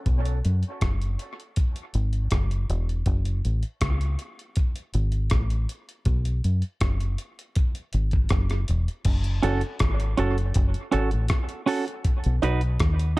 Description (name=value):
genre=dub reggae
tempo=80 BPM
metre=4/4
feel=straight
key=F# dorian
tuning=A4 = 439 Hz
part: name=deep dub fingered electric bass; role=bass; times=0.1-13.2 s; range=E1 to F#2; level=-23 LUFS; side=equal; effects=none
part: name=breakbeat sampler-style drum kit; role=drums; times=0.1-13.2 s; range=crash cymbal, hi-hat, kick drum, rim click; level=-25 LUFS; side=equal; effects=none
part: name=semi-hollow electric guitar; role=accompaniment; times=9.4-13.2 s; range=C#4 to B4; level=-28 LUFS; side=right 4 dB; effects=low-pass filter, dub echo
part: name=cowbell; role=percussion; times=9.4-12.6 s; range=none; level=-39 LUFS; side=right 7 dB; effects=dub echo
room=little or no reverb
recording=dark, warm production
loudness=-23 LUFS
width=side -21 dB against mid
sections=0.0-9.1 A section; 9.1-13.2 B section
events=break 0.1-9.1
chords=0.1 B5; 3.1 F#m; 6.1 B5; 9.1 F#m; 12.1 B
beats=| 0.06 0.81 1.56 2.31 | 3.06 3.81 4.56 5.31 | 6.06 6.81 7.56 8.31 | 9.06 9.80 10.55 11.30 | 12.05 12.80